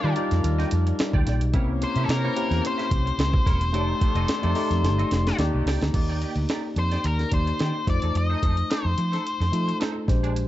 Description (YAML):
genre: polished 1980s jazz-funk pop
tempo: 109 BPM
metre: 4/4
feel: swing 54% on 16ths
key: Eb major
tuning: A4 = 436 Hz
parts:
  - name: octave-fuzz lead guitar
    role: melody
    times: 0.0-9.8 s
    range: A4 to Eb5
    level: -29 LUFS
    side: left 3 dB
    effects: distortion
  - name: warm horn section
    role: second line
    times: 0.0-5.7 s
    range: Eb3 to F5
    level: -36 LUFS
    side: right 1 dB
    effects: none
  - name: tine electric piano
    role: accompaniment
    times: 0.0-10.5 s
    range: G3 to D5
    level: -29 LUFS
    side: left 2 dB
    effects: wide subtle chorus
  - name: semi-hollow electric guitar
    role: riff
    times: 0.0-10.4 s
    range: Ab3 to E5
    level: -37 LUFS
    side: right 6 dB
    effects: ensemble chorus
  - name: vintage muted fingered electric bass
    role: bass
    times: 0.0-10.5 s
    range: E1 to F3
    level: -24 LUFS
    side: equal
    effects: none
  - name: breakbeat sampler-style drum kit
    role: drums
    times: 0.2-10.5 s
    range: crash cymbal, hi-hat, kick drum, snare drum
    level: -26 LUFS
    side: equal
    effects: none
room: digital ambience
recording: dark, warm production, nothing above 7.9 kHz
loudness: -21 LUFS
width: side -14 dB against mid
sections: 0.0-5.9 A section; 5.9-10.5 B section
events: drum fill 4.8-5.9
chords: 0.0 Ebmaj9; 1.5 C7b9; 3.7 F13; 5.4 Ebmaj7; 7.9 F7